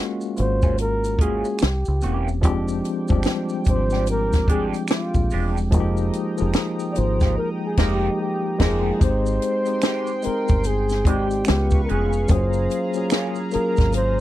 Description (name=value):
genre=R&B, neo-soul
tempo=73 BPM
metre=4/4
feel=swing 62% on 16ths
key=F dorian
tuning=A4 = 438 Hz
part: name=tine electric piano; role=accompaniment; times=0.0-14.2 s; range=E3 to G5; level=-25 LUFS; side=left 2 dB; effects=fast stereo tremolo
part: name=maracas and finger snaps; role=percussion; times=0.2-14.2 s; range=none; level=-38 LUFS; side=right 6 dB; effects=none
part: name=breathy flugelhorn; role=melody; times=0.4-14.2 s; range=F4 to D5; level=-25 LUFS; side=equal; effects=none
part: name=deep dub fingered electric bass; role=bass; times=0.4-14.2 s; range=E1 to Db2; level=-23 LUFS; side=equal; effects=none
part: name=compact cocktail drum kit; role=drums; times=0.4-14.2 s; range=crash cymbal, hi-hat, kick drum, snare drum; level=-20 LUFS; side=equal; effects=none
part: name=electric guitar through a small old amp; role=second line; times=0.6-13.4 s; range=Eb3 to Ab4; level=-31 LUFS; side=right 6 dB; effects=wah
part: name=chorused pulse-width pad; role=sustained chords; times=2.7-14.2 s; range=Ab3 to Eb6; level=-34 LUFS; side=equal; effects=none
room=little or no reverb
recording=dry, close 1970s-style studio recording, tape saturation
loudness=-19 LUFS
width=side -14 dB against mid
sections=0.0-9.0 A section; 9.0-14.2 B section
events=band accent 7.4-9.0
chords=0.0 Gbmaj9; 1.6 C7b9; 2.4 Fm69; 5.7 Fm11; 9.0 Abmaj7; 11.5 Db7; 12.3 Gbmaj9